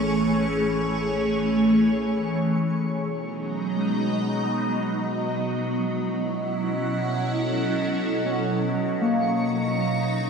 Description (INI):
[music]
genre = ambient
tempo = free time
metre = none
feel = none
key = B major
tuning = A4 = 441 Hz
[part]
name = evolving wavetable pad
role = sustained chords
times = 0.0-10.3 s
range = E3 to A#5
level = -23 LUFS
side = equal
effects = ensemble chorus, built-in reverb, phaser
[part]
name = Celtic harp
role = arpeggios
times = 0.0-10.3 s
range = G#3 to B4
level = -31 LUFS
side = left 3 dB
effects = tape echo
[part]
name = warm sub bass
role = bass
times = 0.0-2.5 s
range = A1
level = -38 LUFS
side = equal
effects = none
[part]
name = analog drone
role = drone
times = 0.0-10.3 s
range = B2 to D#5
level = -30 LUFS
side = right 1 dB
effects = chorus
[part]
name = twinkling granular texture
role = texture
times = 0.0-2.6, 8.9-10.3 s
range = C#6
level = -37 LUFS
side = equal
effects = built-in reverb
[sound]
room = wet lush hall reverb, RT60 2.9 s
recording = small room ambience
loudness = -22 LUFS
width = side -6 dB against mid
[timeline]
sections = 0.0-2.6 A section; 2.6-10.3 B section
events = fade-in on harp 2.6-10.3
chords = 0.0 Amaj7; 2.6 Bmaj7; 5.6 F#m7; 8.7 D#m